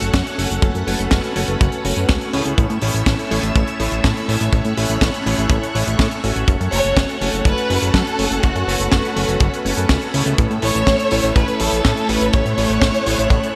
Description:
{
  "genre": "italo disco",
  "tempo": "123 BPM",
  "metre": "4/4",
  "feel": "straight",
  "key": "F# minor",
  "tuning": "A4 = 440 Hz",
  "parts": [
    { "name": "string machine, full ensemble", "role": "sustained chords", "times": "0.0-13.6 s", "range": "A3 to F#6", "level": "-26 LUFS", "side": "equal", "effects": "ensemble chorus" },
    { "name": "clear electric grand piano", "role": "stabs", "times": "0.0-13.5 s", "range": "A2 to C#5", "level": "-27 LUFS", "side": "equal", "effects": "ensemble chorus, delay" },
    { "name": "fat analog bass", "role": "bass", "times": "0.0-13.4 s", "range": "F#1 to A2", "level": "-24 LUFS", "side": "equal", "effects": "none" },
    { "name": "tight funk drum kit", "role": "drums", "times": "0.0-13.5 s", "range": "hi-hat, snare drum", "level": "-26 LUFS", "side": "equal", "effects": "none" },
    { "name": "kick drum", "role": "drums", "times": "0.1-13.4 s", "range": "none", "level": "-20 LUFS", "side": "equal", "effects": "none" },
    { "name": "rich chamber violin section", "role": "melody", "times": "6.7-13.6 s", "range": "F#4 to C#5", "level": "-24 LUFS", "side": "equal", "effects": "delay" }
  ],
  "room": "moderate lush hall reverb, RT60 1.9 s, small room ambience",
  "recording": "bright 1980s-style digital production",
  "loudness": "-18 LUFS",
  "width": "mono",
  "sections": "0.0-13.6 A section",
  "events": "none",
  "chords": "0.0 F#m; 2.6 A; 6.5 F#m; 10.4 A"
}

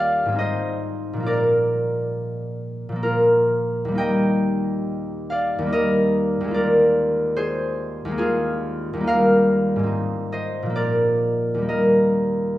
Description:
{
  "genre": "classical, solo harp piece",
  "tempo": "60-74 BPM",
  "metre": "3/4",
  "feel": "rubato",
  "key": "Eb major",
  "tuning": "A4 = 441 Hz",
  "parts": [
    { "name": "concert harp", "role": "solo", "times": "0.0-12.6 s", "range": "Eb2 to G5", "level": "-19 LUFS", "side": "equal", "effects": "none" }
  ],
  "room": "wet recital hall reverb, RT60 1.2 s",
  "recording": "heard from further back in the room",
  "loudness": "-19 LUFS",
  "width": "side -15 dB against mid",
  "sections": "0.0-12.6 A section",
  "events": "none",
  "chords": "0.4 Ab; 1.3 Bb; 4.0 Eb; 6.5 Bb7/Eb; 9.1 Eb; 9.9 Ab; 10.8 Bb; 11.7 Eb"
}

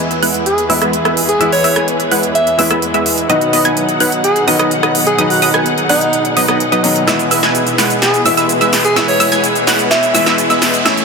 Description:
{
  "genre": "EDM, festival progressive house",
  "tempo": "127 BPM",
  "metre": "4/4",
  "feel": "straight",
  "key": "E major",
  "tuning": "A4 = 440 Hz",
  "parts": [
    { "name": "clear concert grand piano", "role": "accompaniment", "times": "0.0-11.0 s", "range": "A2 to E4", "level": "-19 LUFS", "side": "left 3 dB", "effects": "tape echo" },
    { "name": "dark studio string section", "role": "sustained chords", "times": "0.0-11.0 s", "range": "E2 to F#5", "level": "-21 LUFS", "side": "left 1 dB", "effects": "none" },
    { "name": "wide unison pluck", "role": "arpeggios", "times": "0.0-11.0 s", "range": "D#6 to G#6", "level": "-19 LUFS", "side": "right 2 dB", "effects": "tape echo" },
    { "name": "supersaw stab", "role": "riff", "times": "0.0-11.0 s", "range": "F#3 to G#5", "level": "-17 LUFS", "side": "right 1 dB", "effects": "low-pass filter, tape echo" },
    { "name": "big-room dance drum kit", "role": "drums", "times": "0.1-11.0 s", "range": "hi-hat, rim click, shaker, snare drum", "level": "-17 LUFS", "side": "right 2 dB", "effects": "high-pass filter on hats, high-pass filter on snare, high-pass filter on perc, high-pass filter on room" },
    { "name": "warm alto saxophone", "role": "melody", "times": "0.5-10.3 s", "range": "D#4 to E5", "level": "-18 LUFS", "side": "right 1 dB", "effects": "tape echo" },
    { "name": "riser", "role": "sound effects", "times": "9.5-11.0 s", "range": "none", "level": "-29 LUFS", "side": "right 2 dB", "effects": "none" }
  ],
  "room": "moderate huge ambient reverb, RT60 6.9 s",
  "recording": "dense, heavily limited modern master, high-pass filter",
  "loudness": "-10 LUFS",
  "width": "side -4 dB against mid",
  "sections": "0.0-11.0 A section",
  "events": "build-up 0.0-11.0; filter sweep on supersaw synth 0.0-11.0; drum fill 7.1-11.0",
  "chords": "0.0 E; 3.3 B; 7.1 E/B"
}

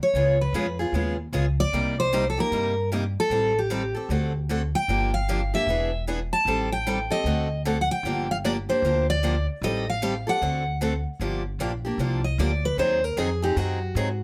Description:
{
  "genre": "acoustic string swing (jazz manouche)",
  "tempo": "152 BPM",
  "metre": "4/4",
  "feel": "swing 63% on 8ths",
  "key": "G minor",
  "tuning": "A4 = 439 Hz",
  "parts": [
    { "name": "picked steel-string acoustic guitar", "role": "melody", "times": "0.0-14.2 s", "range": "Gb4 to A5", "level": "-27 LUFS", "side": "equal", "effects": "none" },
    { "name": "picked steel-string acoustic guitar", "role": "accompaniment", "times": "0.1-14.1 s", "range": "C3 to A4", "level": "-30 LUFS", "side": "equal", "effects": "none" },
    { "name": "upright bass", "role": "bass", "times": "0.1-14.2 s", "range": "E1 to Ab2", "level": "-30 LUFS", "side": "equal", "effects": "none" }
  ],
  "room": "light reverb",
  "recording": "none",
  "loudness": "-25 LUFS",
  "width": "mono",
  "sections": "0.0-11.2 A section; 11.2-14.2 B section",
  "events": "steel-string acoustic guitar solo 11.2-14.2",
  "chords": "0.1 C#7; 1.7 Cm7; 3.3 Am7b5; 4.1 D7; 4.9 Gm7; 5.7 E7; 6.5 Am7b5; 7.3 D7; 8.0 Gm7; 9.6 Am7b5; 10.4 D7; 11.2 Gm7; 12.8 Ab7"
}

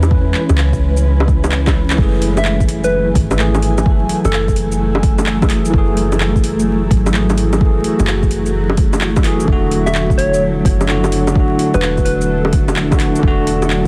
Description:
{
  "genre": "future garage",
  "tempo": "128 BPM",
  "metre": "4/4",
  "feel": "swing 66% on 16ths",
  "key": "F# minor",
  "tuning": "A4 = 440 Hz",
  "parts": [
    { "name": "bell-like tine electric piano", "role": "accompaniment", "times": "0.0-13.9 s", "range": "D3 to B4", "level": "-21 LUFS", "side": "equal", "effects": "sidechain pumping, analog delay" },
    { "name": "granular cloud pad", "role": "sustained chords", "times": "0.0-13.9 s", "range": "F#3 to G#5", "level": "-24 LUFS", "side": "equal", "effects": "built-in reverb, sidechain pumping" },
    { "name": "soft 808-style bass", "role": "bass", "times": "0.0-13.9 s", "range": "E1 to E2", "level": "-20 LUFS", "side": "equal", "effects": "tube saturation, sidechain pumping" },
    { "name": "deep house drum kit", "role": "drums", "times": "0.0-13.8 s", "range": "bongos, handclaps, hi-hat, shaker", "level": "-24 LUFS", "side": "equal", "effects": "overdrive, small room ambience" },
    { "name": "electronic kick drum", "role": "drums", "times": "0.1-13.9 s", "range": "none", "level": "-18 LUFS", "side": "equal", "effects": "overdrive, small room ambience" },
    { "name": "soft struck synth lead", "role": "melody", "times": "2.4-4.6, 9.9-12.4 s", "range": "A4 to E5", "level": "-24 LUFS", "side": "equal", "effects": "chorus, tremolo, tape echo" }
  ],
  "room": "light reverb, digital ambience",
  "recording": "dense, heavily limited modern master, vinyl crackle",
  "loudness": "-15 LUFS",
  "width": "mono",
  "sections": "0.0-2.0 A section; 2.0-13.9 B section",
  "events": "drum fill 1.6-2.0; band accent 1.9",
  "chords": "0.0 C#m7; 2.0 F#m9; 9.5 E9sus4"
}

